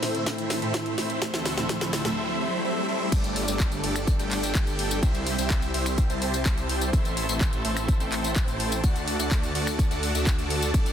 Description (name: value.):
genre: EDM, festival progressive house.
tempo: 126 BPM.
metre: 4/4.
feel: straight.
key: unclear.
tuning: A4 = 440 Hz.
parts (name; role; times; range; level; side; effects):
fingerpicked old ladder-braced acoustic guitar; accompaniment; 0.0-2.2 s; A2 to E4; -34 LUFS; right 2 dB; sidechain pumping, dub echo.
lush unison pad; sustained chords; 0.0-10.9 s; D2 to A5; -35 LUFS; equal; chorus, sidechain pumping.
big supersaw lead; riff; 0.0-10.9 s; G3 to A5; -29 LUFS; right 1 dB; phaser, sidechain pumping, dub echo.
house drum kit; drums; 0.0-10.9 s; crash cymbal, finger snaps, handclaps, hi-hat, snare drum, tambourine; -31 LUFS; left 1 dB; none.
riser and swell; sound effects; 0.0-3.1 s; none; -35 LUFS; left 1 dB; none.
electronic kick drum; drums; 0.3-10.8 s; none; -24 LUFS; equal; high-pass filter on kick, high-pass filter on room.
wide detuned saw bass; bass; 3.1-10.9 s; G1 to D2; -30 LUFS; equal; chorus, sidechain pumping.
room: light reverb.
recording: dense, heavily limited modern master.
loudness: -23 LUFS.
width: side -9 dB against mid.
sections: 0.0-3.1 A section; 3.1-10.9 B section.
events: build-up 0.0-3.1; drum fill 0.0-2.2; riser 0.0-3.1; filter sweep on analog synth pad 0.0-3.1; swell 2.2-3.1; drop 3.1-10.9.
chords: 0.0 Am; 1.2 D; 3.1 Gsus2; 5.0 C; 6.9 Am; 8.8 D.